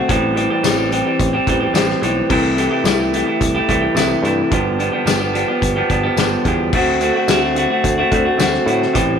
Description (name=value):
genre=indie rock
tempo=108 BPM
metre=4/4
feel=straight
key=unclear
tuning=A4 = 440 Hz
part: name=electric guitar through a small old amp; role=riff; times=0.0-9.2 s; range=G2 to G4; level=-16 LUFS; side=equal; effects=none
part: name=picked electric bass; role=bass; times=0.1-9.2 s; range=G1 to A2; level=-22 LUFS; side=right 2 dB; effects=none
part: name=loose indie drum kit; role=drums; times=0.1-9.1 s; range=crash cymbal, hi-hat, kick drum, snare drum, tambourine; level=-21 LUFS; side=left 3 dB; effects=none
room=light reverb, small room reverb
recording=1960s-style stereo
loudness=-14 LUFS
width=side -7 dB against mid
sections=0.0-9.2 A section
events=none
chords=0.1 Am7; 2.3 C6; 4.5 G7; 6.7 D7